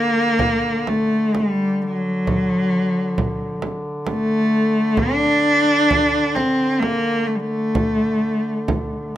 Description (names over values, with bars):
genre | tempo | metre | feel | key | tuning
caucasian folk, Caucasian lament | 62-68 BPM | 3/4 | rubato | unclear | A4 = 440 Hz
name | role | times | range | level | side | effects
rich cello | melody | 0.0-9.2 s | F#3 to D4 | -18 LUFS | equal | none
mellow duduk | drone | 0.0-9.2 s | D3 | -29 LUFS | equal | none
frame drum | percussion | 0.4-8.9 s | none | -25 LUFS | right 2 dB | none
room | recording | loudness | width
light reverb | close, detailed microphones | -17 LUFS | side -12 dB against mid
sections
0.0-9.2 A section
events
none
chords
none